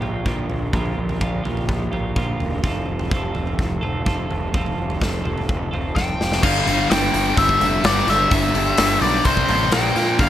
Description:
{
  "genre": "quiet-loud alternative rock",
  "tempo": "127 BPM",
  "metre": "4/4",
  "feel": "straight",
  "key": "unclear",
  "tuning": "A4 = 439 Hz",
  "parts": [
    { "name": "twelve-string electric guitar", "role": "arpeggios", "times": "0.0-6.4 s", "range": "Bb2 to A4", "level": "-27 LUFS", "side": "right 2 dB", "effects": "harmonic tremolo, digital delay" },
    { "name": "fuzz picked electric bass", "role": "bass", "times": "0.0-10.3 s", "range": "E1 to Bb2", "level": "-24 LUFS", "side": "equal", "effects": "overdrive" },
    { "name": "big rock drum kit", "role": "drums", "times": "0.0-10.3 s", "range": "crash cymbal, hi-hat, kick drum, snare drum, toms", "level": "-23 LUFS", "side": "equal", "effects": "none" },
    { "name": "nasal lead guitar with a parked wah", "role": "melody", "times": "6.0-10.3 s", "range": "C5 to G5", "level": "-20 LUFS", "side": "left 3 dB", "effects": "overdrive" },
    { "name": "thick fuzz guitar", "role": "riff", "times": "6.4-10.3 s", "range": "G2 to C4", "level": "-20 LUFS", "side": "right 1 dB", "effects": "distortion" }
  ],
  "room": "light reverb, small room ambience",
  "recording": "none",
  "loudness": "-18 LUFS",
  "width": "side -12 dB against mid",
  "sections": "0.0-6.4 A section; 6.4-10.3 B section",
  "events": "drum fill 6.0-6.4",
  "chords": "0.0 Bb6; 2.6 Fadd9; 6.4 G5; 9.3 C5; 9.7 Bb5"
}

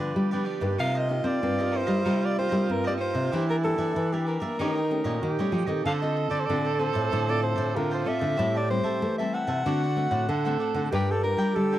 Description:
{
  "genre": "samba",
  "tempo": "95 BPM",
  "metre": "4/4",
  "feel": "straight",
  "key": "unclear",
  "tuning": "A4 = 440 Hz",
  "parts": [
    { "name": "mellow soprano saxophone", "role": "melody", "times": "0.0-11.8 s", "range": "F4 to F#5", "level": "-29 LUFS", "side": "left 1 dB", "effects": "none" },
    { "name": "cavaquinho", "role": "accompaniment", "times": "0.0-11.8 s", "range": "D4 to A5", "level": "-36 LUFS", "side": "right 2 dB", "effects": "none" },
    { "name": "nylon-string guitar", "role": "accompaniment", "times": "0.0-11.8 s", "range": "G2 to Bb4", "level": "-32 LUFS", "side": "left 4 dB", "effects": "none" },
    { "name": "nylon-string guitar", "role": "bass", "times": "0.0-11.8 s", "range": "G2 to C4", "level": "-28 LUFS", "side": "left 1 dB", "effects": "none" },
    { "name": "mellow tenor saxophone", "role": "second line", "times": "0.2-11.8 s", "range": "Eb4 to A4", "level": "-31 LUFS", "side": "right 9 dB", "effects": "none" }
  ],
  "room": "light reverb",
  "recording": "dry, close 1970s-style studio recording",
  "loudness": "-24 LUFS",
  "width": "side -13 dB against mid",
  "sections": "0.0-11.8 A section",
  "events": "none",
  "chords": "0.0 G7; 0.8 Cm7; 3.3 Em7b5; 4.6 Eb7#11; 5.9 Dm7; 8.4 Am7; 9.7 D7; 10.9 Gm7"
}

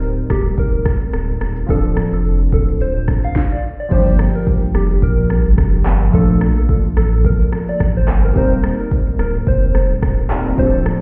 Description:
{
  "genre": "afrobeats",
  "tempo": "108 BPM",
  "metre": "4/4",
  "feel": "swing 55% on 16ths",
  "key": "G minor",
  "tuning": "A4 = 440 Hz",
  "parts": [
    { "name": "warm analog keys", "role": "accompaniment", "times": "0.0-11.0 s", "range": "F3 to Bb4", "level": "-24 LUFS", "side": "equal", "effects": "chorus" },
    { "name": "warm sub bass", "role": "bass", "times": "0.0-10.9 s", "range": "D1 to Bb1", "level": "-18 LUFS", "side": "equal", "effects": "none" },
    { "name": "afro-pop drum kit", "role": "drums", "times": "0.0-11.0 s", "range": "crash cymbal, handclaps, kick drum, rim click, shaker, snare drum", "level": "-21 LUFS", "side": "equal", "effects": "overdrive" },
    { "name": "soft struck synth lead", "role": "melody", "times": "0.3-10.7 s", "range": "G4 to F5", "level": "-26 LUFS", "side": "equal", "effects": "chorus, tremolo, digital delay" }
  ],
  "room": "little or no reverb",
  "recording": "heard muffled through a wall, stone room reverb, EQ",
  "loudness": "-16 LUFS",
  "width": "mono",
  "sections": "0.0-3.9 A section; 3.9-11.0 B section",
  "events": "none",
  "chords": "0.0 Eb6; 1.7 Dm7; 3.9 Gm7; 6.1 Bbmaj7; 8.4 Eb6"
}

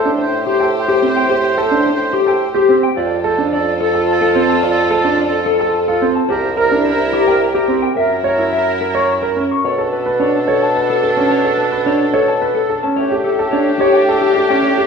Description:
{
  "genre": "classical, minimalist pattern music",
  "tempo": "108 BPM",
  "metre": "3/4",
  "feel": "straight",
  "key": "B minor from 9.6 s",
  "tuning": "A4 = 440 Hz",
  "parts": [
    { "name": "mellow electric guitar", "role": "melody", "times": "0.0-14.8 s", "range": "G4 to C#6", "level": "-18 LUFS", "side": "left 4 dB", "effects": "none" },
    { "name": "warm oboe", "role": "second line", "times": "0.0-14.9 s", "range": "G4 to C5", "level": "-22 LUFS", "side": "right 2 dB", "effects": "none" },
    { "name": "clear symphonic string section", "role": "sustained chords", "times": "0.0-14.9 s", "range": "D4 to C5", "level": "-24 LUFS", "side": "equal", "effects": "none" },
    { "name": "warm concert grand piano", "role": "arpeggios", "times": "0.0-14.9 s", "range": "C4 to C#5", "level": "-17 LUFS", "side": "right 4 dB", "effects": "none" },
    { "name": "mellow bassoon", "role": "bass", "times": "0.0-14.9 s", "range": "C2 to B2", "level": "-21 LUFS", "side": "equal", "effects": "none" }
  ],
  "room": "wet recital hall reverb, RT60 1.6 s",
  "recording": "heard from further back in the room",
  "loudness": "-13 LUFS",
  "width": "side -5 dB against mid",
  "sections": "0.0-9.6 A section; 9.6-14.9 B section",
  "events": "none",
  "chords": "0.0 Am7; 3.0 F6; 6.3 C7; 8.0 F#7; 9.6 Bm7; 13.0 A7sus4"
}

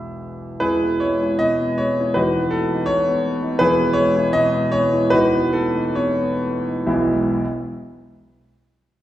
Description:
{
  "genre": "classical, romantic character piece for solo piano",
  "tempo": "60-85 BPM",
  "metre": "2/4",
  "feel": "rubato",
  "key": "E major",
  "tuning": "A4 = 444 Hz",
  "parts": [
    { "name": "warm grand piano", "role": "solo", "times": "0.0-7.4 s", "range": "E1 to E6", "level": "-17 LUFS", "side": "equal", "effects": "none" }
  ],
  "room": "wet recital hall reverb, RT60 1.5 s",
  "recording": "heard from further back in the room",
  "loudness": "-17 LUFS",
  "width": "side -13 dB against mid",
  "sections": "0.6-6.9 A section; 6.9-8.4 B section",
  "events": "slowing down 2.9-6.9",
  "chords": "0.0 E; 2.1 B7/E; 3.6 E; 5.1 B7/E; 6.9 E"
}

